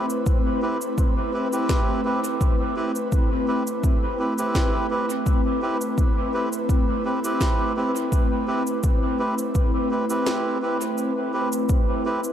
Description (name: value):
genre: ambient dub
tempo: 84 BPM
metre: 4/4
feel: swing 53% on 16ths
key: A minor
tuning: A4 = 440 Hz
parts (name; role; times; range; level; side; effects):
- airy breathy pad; sustained chords; 0.0-12.3 s; A3 to B4; -26 LUFS; equal; chorus
- melodica; stabs; 0.0-12.2 s; C4 to B4; -27 LUFS; right 2 dB; dub echo
- wind-like tuned noise texture; texture; 0.0-12.3 s; C4; -33 LUFS; left 3 dB; built-in reverb
- electronic shaker and snare drum; drums; 0.1-12.3 s; none; -33 LUFS; equal; dub echo
- electronic kick drum; drums; 0.3-11.8 s; none; -21 LUFS; equal; none
room: moderate spring reverb, RT60 2.4 s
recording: none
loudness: -20 LUFS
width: side -10 dB against mid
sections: 0.0-12.3 A section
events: kick drops out 10.3-11.7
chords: 0.0 Am7